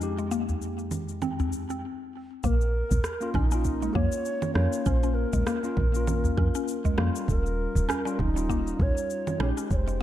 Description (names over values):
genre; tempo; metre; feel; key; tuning
organic downtempo; 99 BPM; 4/4; swing 56% on 16ths; Bb dorian; A4 = 441 Hz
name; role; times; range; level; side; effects
tine electric piano; accompaniment; 0.0-10.0 s; F2 to G4; -33 LUFS; left 3 dB; phaser, sidechain pumping, digital delay
electronic cabasa, congas and rim click; drums; 0.0-10.0 s; none; -35 LUFS; right 2 dB; overdrive
mallet-like synth pluck; arpeggios; 0.2-10.0 s; G3 to Db4; -33 LUFS; left 2 dB; chorus, phaser, digital delay
udu; percussion; 0.5-8.9 s; none; -31 LUFS; equal; none
mellow low Native American-style wooden flute; melody; 2.4-10.0 s; Eb4 to Db5; -32 LUFS; right 2 dB; digital delay
woody FM bass; bass; 2.4-10.0 s; Eb1 to F2; -26 LUFS; equal; tube saturation, sidechain pumping
electronic kick drum; drums; 2.4-9.8 s; none; -28 LUFS; equal; overdrive
room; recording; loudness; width
light reverb; dark, warm production; -24 LUFS; side -12 dB against mid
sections
0.0-2.4 A section; 2.4-10.0 B section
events
break 1.8-2.4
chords
0.0 Fm7; 2.4 Bbm; 7.3 Eb7